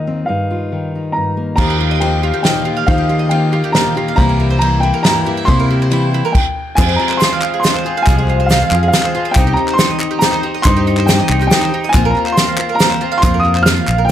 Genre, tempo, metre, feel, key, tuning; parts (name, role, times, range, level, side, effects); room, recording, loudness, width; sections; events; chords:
indie folk with a building arrangement; 139 BPM; 3/4; straight; F minor; A4 = 440 Hz
dark upright piano; melody; 0.0-14.1 s; Eb5 to F6; -18 LUFS; equal
fingerpicked steel-string acoustic guitar; accompaniment; 0.0-6.3 s; Eb2 to G4; -20 LUFS; left 2 dB
picked swing-style acoustic guitar; accompaniment; 1.6-14.1 s; F2 to Bb4; -21 LUFS; left 8 dB
mandolin; arpeggios; 1.6-14.1 s; Eb4 to F5; -21 LUFS; right 8 dB
fingered electric bass; bass; 1.6-14.1 s; Bb1 to Eb3; -15 LUFS; equal
unplugged drum kit; drums; 1.6-13.8 s; crash cymbal, hi-hat, kick drum, ride cymbal, snare drum; -16 LUFS; right 1 dB
egg shaker; percussion; 6.8-14.1 s; -30 LUFS; right 7 dB
group handclap; percussion; 6.8-14.0 s; -23 LUFS; left 3 dB
studio reverb; dark, warm production; -12 LUFS; side -11 dB against mid
0.0-1.6 A section; 1.6-6.8 B section; 6.8-14.1 C section
0.3 Ebadd9/G; 1.6 Ebadd9; 4.2 C7; 6.8 Fm; 9.4 Cm; 11.9 Bbsus2